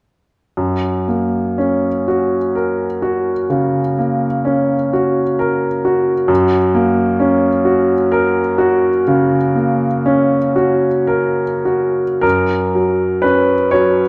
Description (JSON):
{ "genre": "classical, romantic nocturne for solo piano", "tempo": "33-45 BPM (dotted quarters)", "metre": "12/8", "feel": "rubato", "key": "F# major", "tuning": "A4 = 440 Hz", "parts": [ { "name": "clear baby grand piano", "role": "solo", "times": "0.6-14.1 s", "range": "F#2 to C#5", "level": "-16 LUFS", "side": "equal", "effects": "none" } ], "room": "wet recital hall reverb, RT60 1.4 s", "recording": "dark, warm production", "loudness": "-16 LUFS", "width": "mono", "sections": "0.6-12.2 A section; 12.2-14.1 B section", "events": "none", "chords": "0.6 F#", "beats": "| 0.57 2.07 3.50 4.94 | 6.30 7.67 9.07 10.57 | 12.24 13.73" }